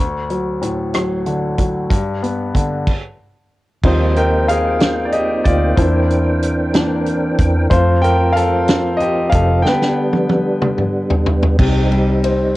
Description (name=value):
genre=six-eight pop ballad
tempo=62 BPM (dotted quarters)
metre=6/8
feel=straight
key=unclear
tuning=A4 = 440 Hz
part: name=clear grand piano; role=accompaniment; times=0.0-12.6 s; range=D2 to G5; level=-18 LUFS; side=left 1 dB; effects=none
part: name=natural country drum kit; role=drums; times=0.3-12.4 s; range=crash cymbal, hi-hat, kick drum, ride cymbal, rim click, snare drum, toms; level=-17 LUFS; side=equal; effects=cassette tape
part: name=tonewheel organ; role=sustained chords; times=3.8-12.6 s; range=E3 to G5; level=-20 LUFS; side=right 1 dB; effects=chorus vibrato, slow rotary speaker
part: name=vintage muted fingered electric bass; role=bass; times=3.8-12.6 s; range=F1 to F2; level=-18 LUFS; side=equal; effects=none
room=light reverb, small room ambience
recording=home recording on cassette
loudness=-14 LUFS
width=side -17 dB against mid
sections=0.0-3.8 A section; 3.8-11.6 B section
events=stop 2.9-3.8; grand piano solo 3.8-11.6; break 9.7-11.6; drum fill 9.7-11.6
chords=0.0 D; 1.9 G; 2.9 N.C.; 3.8 Eb6; 5.8 C7/E; 7.7 F; 9.7 G; 11.6 Cm